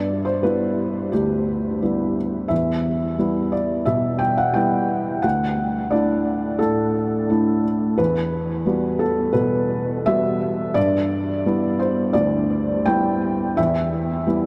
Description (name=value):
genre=neoclassical minimalist piano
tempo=87 BPM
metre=4/4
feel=rubato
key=E minor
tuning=A4 = 439 Hz
part: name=felt-muted upright piano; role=solo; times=0.0-14.5 s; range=D2 to G5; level=-21 LUFS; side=equal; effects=tape echo
room=wet huge ambient reverb, RT60 8.4 s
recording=dreamy mix soaked in reverb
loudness=-21 LUFS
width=mono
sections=0.0-14.5 A section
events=none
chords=0.0 G6; 2.5 Em; 5.2 Dadd9; 8.0 Emadd9; 10.8 G6; 13.6 Em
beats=0.43 1.13 1.82 | 2.51 3.19 3.87 4.55 | 5.24 5.92 6.60 7.29 | 7.99 8.66 9.35 10.06 | 10.76 11.45 12.14 12.87 | 13.57 14.27